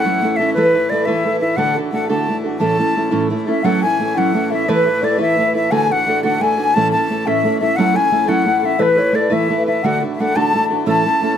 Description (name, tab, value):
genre	celtic folk, Celtic jig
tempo	116 BPM (dotted quarters)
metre	6/8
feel	straight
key	A major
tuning	A4 = 443 Hz
part	wooden flute	melody	0.0-11.4 s	B4 to A5	-18 LUFS	left 2 dB	none
part	fingerpicked steel-string acoustic guitar	accompaniment	0.0-11.4 s	A2 to B4	-17 LUFS	right 2 dB	none
part	accordion	drone	0.0-11.4 s	A2 to E3	-27 LUFS	left 5 dB	none
part	mellow baroque flute	second line	3.5-11.4 s	B4 to A5	-21 LUFS	left 7 dB	none
room	moderate studio reverb, RT60 0.8 s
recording	none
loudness	-14 LUFS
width	side -9 dB against mid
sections	0.0-3.6 A section; 3.6-11.4 A section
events	none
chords	0.0 F#m7; 0.5 Esus4; 1.6 D; 2.6 A; 3.6 F#m7; 4.7 Esus4; 5.7 D; 6.7 A; 7.8 F#m7; 8.8 Esus4; 9.8 D; 10.9 A